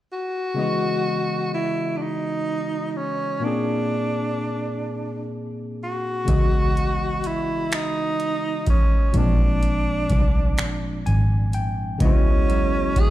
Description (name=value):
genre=slow six-eight R&B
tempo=42 BPM (dotted quarters)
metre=6/8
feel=straight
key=C# dorian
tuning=A4 = 440 Hz
part: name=warm tenor saxophone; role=melody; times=0.1-13.1 s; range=C#4 to G#4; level=-26 LUFS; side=right 2 dB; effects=none
part: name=barky tine electric piano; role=accompaniment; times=0.5-13.1 s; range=A#2 to G#5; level=-26 LUFS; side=left 2 dB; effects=overdrive
part: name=vintage muted fingered electric bass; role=bass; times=6.3-13.1 s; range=G#1 to C#2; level=-23 LUFS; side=equal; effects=none
part: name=booming analog drum machine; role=drums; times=6.3-13.1 s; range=finger snaps, hi-hat, kick drum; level=-21 LUFS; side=equal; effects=none
part: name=clean electric guitar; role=second line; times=12.0-13.1 s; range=C#3 to B3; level=-29 LUFS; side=right 11 dB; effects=none
room=little or no reverb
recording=played on a big sound system in a bare room, stone room reverb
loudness=-20 LUFS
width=side -14 dB against mid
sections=0.6-12.0 A section; 12.0-13.1 B section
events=break 10.6-12.0; tine electric piano fill 10.6-12.0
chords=0.0 N.C.; 0.6 C#m11; 3.4 A#7; 6.3 C#m11; 9.1 A#7; 12.0 C#m11